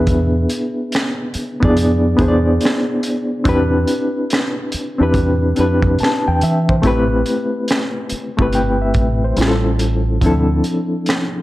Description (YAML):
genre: R&B, neo-soul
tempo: 71 BPM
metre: 4/4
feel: swing 64% on 16ths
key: A minor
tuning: A4 = 441 Hz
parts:
  - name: reed electric piano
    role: accompaniment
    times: 0.0-11.4 s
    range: F3 to A5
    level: -17 LUFS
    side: left 1 dB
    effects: fast tremolo
  - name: deep dub fingered electric bass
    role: bass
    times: 0.0-10.6 s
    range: G1 to E3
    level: -18 LUFS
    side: equal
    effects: none
  - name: crunchy breakbeat drum kit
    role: drums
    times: 0.1-11.3 s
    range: finger snaps, hi-hat, kick drum, snare drum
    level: -20 LUFS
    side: equal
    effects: none
room: light reverb, small room ambience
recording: none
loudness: -14 LUFS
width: side -16 dB against mid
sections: 0.0-11.4 A section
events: none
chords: 0.0 E7; 3.5 Cmaj9/E; 6.8 Am9; 9.4 A7b13; 10.2 Dm7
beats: | 0.07 0.92 1.76 2.61 | 3.45 4.30 5.14 5.99 | 6.83 7.68 8.52 9.37 | 10.21 11.06